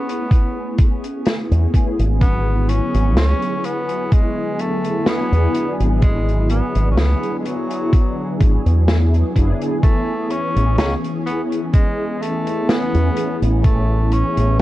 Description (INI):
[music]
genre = vaporwave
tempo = 63 BPM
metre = 4/4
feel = swing 53% on 16ths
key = A major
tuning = A4 = 440 Hz
[part]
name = breathy tenor saxophone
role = melody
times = 0.0-14.6 s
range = F#3 to C#4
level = -25 LUFS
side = equal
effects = vintage 12-bit sampler grit, tape echo
[part]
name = mellow synth brass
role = accompaniment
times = 0.0-14.6 s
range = D3 to G#4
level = -22 LUFS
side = equal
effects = ensemble chorus
[part]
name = open jazz drum kit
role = drums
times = 0.1-14.6 s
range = hi-hat, snare drum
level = -23 LUFS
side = equal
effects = none
[part]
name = electronic kick drum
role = drums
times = 0.3-13.8 s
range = none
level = -14 LUFS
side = equal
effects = none
[part]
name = fingered electric bass with an envelope filter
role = bass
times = 1.5-14.6 s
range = F#1 to E2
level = -16 LUFS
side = equal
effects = none
[sound]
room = little or no reverb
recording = dark, warm production, cassette tape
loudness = -15 LUFS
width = side -16 dB against mid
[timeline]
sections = 0.0-14.6 A section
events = none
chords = 0.0 Amaj9; 2.2 E9/G#; 9.8 Amaj9